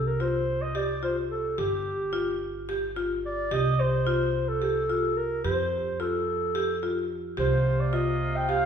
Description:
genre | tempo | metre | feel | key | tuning
contemporary instrumental, chamber music in an uneven meter | 217 BPM (eighths) | 7/8 | straight | unclear | A4 = 440 Hz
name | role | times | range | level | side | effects
mellow clarinet | melody | 0.0-8.7 s | G4 to G5 | -28 LUFS | equal | none
marimba with hard mallets | arpeggios | 0.0-8.7 s | F4 to G4 | -30 LUFS | left 1 dB | none
upright bass | bass | 0.0-8.7 s | G1 to F2 | -30 LUFS | right 1 dB | none
warm woodwind section | sustained chords | 7.4-8.7 s | C3 to F4 | -35 LUFS | right 1 dB | none
room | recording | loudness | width
wet recital hall reverb, RT60 1.6 s | heard from further back in the room | -25 LUFS | side -7 dB against mid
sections
0.0-8.7 A section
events
none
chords
0.0 Csus4; 1.6 Dmadd11/G (rootless); 3.5 C5; 5.4 F; 7.4 C7sus4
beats
0.20 0.48 0.75 1.03 1.30 | 1.58 1.86 2.13 2.41 2.69 2.96 3.24 | 3.51 3.79 4.07 4.34 4.62 4.89 5.17 | 5.45 5.72 6.00 6.28 6.55 6.83 7.11 | 7.39 7.66 7.94 8.22 8.49

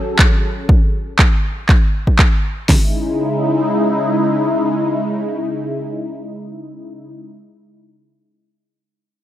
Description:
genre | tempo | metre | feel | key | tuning
afro house | 120 BPM | 4/4 | swing 53% on 16ths | C# minor | A4 = 440 Hz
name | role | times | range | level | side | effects
warm analog pad | sustained chords | 0.0-7.1 s | C#3 to A4 | -18 LUFS | left 1 dB | chorus, sidechain pumping
deep house drum kit | drums | 0.2-2.8 s | hi-hat, kick drum, snare drum | -13 LUFS | equal | overdrive
electronic handclaps | drums | 0.2-2.3 s | none | -18 LUFS | equal | none
room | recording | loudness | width
light reverb, studio ambience | none | -14 LUFS | side -13 dB against mid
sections
0.0-2.7 A section; 2.7-6.7 B section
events
none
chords
0.0 F#m; 2.7 C#m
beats
0.19 | 0.69 1.19 1.69 2.19 | 2.69 3.19 3.69 4.19 | 4.69 5.19 5.69 6.19

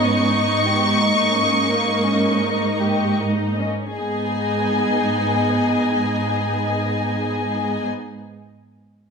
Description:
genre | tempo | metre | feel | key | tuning
classical, slow romantic movement for symphony orchestra | 37-47 BPM | 3/4 | rubato | G# minor | A4 = 441 Hz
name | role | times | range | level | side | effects
warm symphonic violin section | melody | 0.0-7.9 s | G#5 to C#6 | -23 LUFS | left 3 dB | none
warm symphonic violin section | second line | 0.0-7.9 s | A#3 to D#5 | -24 LUFS | left 4 dB | none
rich studio viola section | accompaniment | 0.0-7.9 s | A#3 to D#4 | -24 LUFS | right 2 dB | none
warm symphonic cello section | bass | 0.0-7.9 s | G#2 | -24 LUFS | right 3 dB | none
room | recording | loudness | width
wet recital hall reverb, RT60 1.4 s | minimal, uncompressed stereo recording | -18 LUFS | side -5 dB against mid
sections
0.0-4.0 A section; 4.0-8.4 B section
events
slowing down 0.0-4.0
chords
0.0 D#7(no3)/G#; 4.0 G#m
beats
1.00 2.42 | 3.96 5.42 6.90

